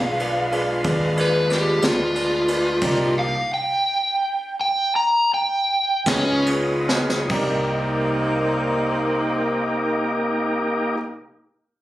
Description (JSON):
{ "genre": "slow blues", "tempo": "47-61 BPM (dotted quarters)", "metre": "12/8", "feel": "straight", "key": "C minor", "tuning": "A4 = 443 Hz", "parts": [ { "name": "overdriven slide guitar", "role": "melody", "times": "0.0-6.5 s", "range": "Db4 to Bb5", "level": "-20 LUFS", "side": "equal", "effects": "none" }, { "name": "clear upright piano", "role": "accompaniment", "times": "0.0-11.0 s", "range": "Eb4 to Eb5", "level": "-27 LUFS", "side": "right 1 dB", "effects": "none" }, { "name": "tonewheel organ", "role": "sustained chords", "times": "0.0-11.0 s", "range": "Ab3 to B4", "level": "-25 LUFS", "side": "left 1 dB", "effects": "slow rotary speaker, overdrive" }, { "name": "warm saxophone section", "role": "sustained chords", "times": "0.0-11.0 s", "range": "Ab3 to F4", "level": "-27 LUFS", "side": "equal", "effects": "none" }, { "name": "hollow-body short-scale fingered electric bass", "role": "bass", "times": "0.0-10.9 s", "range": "B1 to Eb2", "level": "-28 LUFS", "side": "equal", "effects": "none" }, { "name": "jazz brush drum kit", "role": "drums", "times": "0.2-7.5 s", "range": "crash cymbal, kick drum, ride cymbal, snare drum", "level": "-27 LUFS", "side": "equal", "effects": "none" } ], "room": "light reverb", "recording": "recorded on a phone in the room, club reverb, compression", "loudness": "-19 LUFS", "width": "side -15 dB against mid", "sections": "0.0-7.3 A section; 7.3-11.8 B section", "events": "electric slide guitar solo 0.0-7.3; slowing down 1.5-7.3; drum fill 6.9-7.3", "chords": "0.0 G7b9 (rootless); 2.8 Cm7; 6.1 Db7; 7.3 Cm7", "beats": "0.85 1.83 | 2.83 3.85 4.93 6.07 | 7.31 8.59 9.88" }